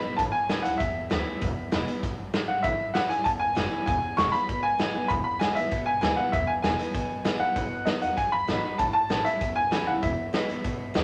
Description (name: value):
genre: rockabilly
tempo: 195 BPM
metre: 4/4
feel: straight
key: E major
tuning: A4 = 439 Hz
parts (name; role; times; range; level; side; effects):
- clear upright piano; melody; 0.0-11.0 s; D#5 to C#6; -29 LUFS; equal; none
- picked steel-string acoustic guitar; accompaniment; 0.0-11.0 s; E2 to F#4; -35 LUFS; equal; none
- upright bass; bass; 0.0-11.0 s; E1 to F#2; -39 LUFS; equal; none
- raw garage drum kit; drums; 0.2-11.0 s; hi-hat, kick drum, snare drum; -32 LUFS; equal; none
room: moderate club reverb, RT60 0.8 s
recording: none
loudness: -27 LUFS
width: mono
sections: 0.0-11.0 A section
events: none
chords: 0.2 A; 1.4 E; 2.6 A; 3.9 E; 7.6 B; 8.8 A; 10.0 E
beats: | 0.19 0.50 0.81 1.11 | 1.42 1.73 2.03 2.34 | 2.65 2.95 3.26 3.57 | 3.87 4.18 4.49 4.79 | 5.10 5.41 5.71 6.02 | 6.33 6.64 6.95 7.25 | 7.56 7.87 8.18 8.48 | 8.79 9.10 9.41 9.72 | 10.03 10.34 10.64 10.95